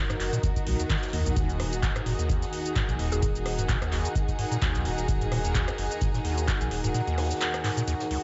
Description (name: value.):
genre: acid house.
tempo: 129 BPM.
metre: 4/4.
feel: swing 56% on 16ths.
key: Eb minor.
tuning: A4 = 440 Hz.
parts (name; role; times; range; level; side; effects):
dark chamber string section; sustained chords; 0.0-8.2 s; Eb3 to Bb4; -36 LUFS; equal; sidechain pumping.
warm sub bass; bass; 0.0-6.9 s; Eb1 to Eb2; -34 LUFS; equal; sidechain pumping.
deep dark ambient pad; texture; 0.0-8.2 s; Eb4 to Eb6; -39 LUFS; equal; chorus, built-in reverb, sidechain pumping.
acid bass, square; riff; 0.1-8.2 s; Db2 to Eb3; -33 LUFS; equal; overdrive, sidechain pumping, analog delay.
booming analog drum machine; drums; 0.1-8.2 s; handclaps, hi-hat, rim click, shaker; -36 LUFS; equal; none.
open jazz drum kit; drums; 0.2-8.1 s; hi-hat, snare drum; -49 LUFS; equal; none.
electronic kick drum; drums; 0.4-6.6 s; none; -30 LUFS; equal; none.
mallet-like synth pluck; melody; 3.1-3.6 s; Ab4; -38 LUFS; equal; chorus, analog delay.
room: light reverb, digital ambience.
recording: nothing above 7.7 kHz.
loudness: -27 LUFS.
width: mono.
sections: 0.0-8.2 A section.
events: none.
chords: 0.0 Ebm.